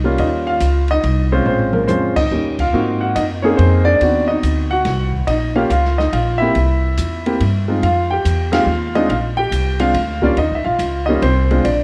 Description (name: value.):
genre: jazz piano trio.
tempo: 142 BPM.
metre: 3/4.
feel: swing 65% on 8ths.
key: Eb mixolydian.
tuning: A4 = 440 Hz.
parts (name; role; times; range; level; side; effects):
warm concert grand piano; melody; 0.0-11.8 s; G3 to G5; -19 LUFS; equal; slapback echo.
upright bass; bass; 0.0-11.8 s; Bb1 to Ab2; -21 LUFS; equal; none.
open jazz drum kit; drums; 0.2-11.8 s; crash cymbal, hi-hat, kick drum, ride cymbal, snare drum, toms; -30 LUFS; equal; none.
room: light reverb.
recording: none.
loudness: -17 LUFS.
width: mono.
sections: 0.0-11.8 A section.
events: drum fill 1.5-2.3; band accent 2.1, 8.5.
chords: 0.2 Eb7; 1.5 Bbm7; 2.3 Eb7; 2.7 Ab7; 4.0 D13b9; 5.3 Eb7; 6.6 C; 7.8 Fm7; 9.1 Bb; 10.4 Eb7(no3).